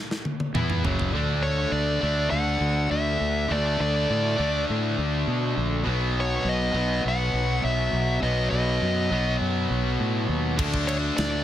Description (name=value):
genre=heavy metal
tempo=102 BPM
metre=4/4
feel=straight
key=unclear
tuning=A4 = 438 Hz
part: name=tight metal drum kit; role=drums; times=0.1-1.1, 10.6-11.3 s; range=crash cymbal, kick drum, ride cymbal, snare drum, toms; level=-28 LUFS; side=equal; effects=none
part: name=distorted electric guitar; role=riff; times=0.5-11.4 s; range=F#2 to E4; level=-26 LUFS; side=left 1 dB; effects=overdrive
part: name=fuzz fingered electric bass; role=bass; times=0.5-11.4 s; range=F#1 to B2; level=-26 LUFS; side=equal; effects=overdrive
part: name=nasal lead guitar with a parked wah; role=melody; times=1.4-11.4 s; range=C#5 to F#5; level=-28 LUFS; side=equal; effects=overdrive, digital delay
room=light reverb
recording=none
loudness=-22 LUFS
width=side -11 dB against mid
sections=0.0-1.1 A section; 1.1-11.4 B section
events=drum fill 0.0-1.1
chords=0.0 F#5; 1.1 D5; 5.9 B; 10.6 D5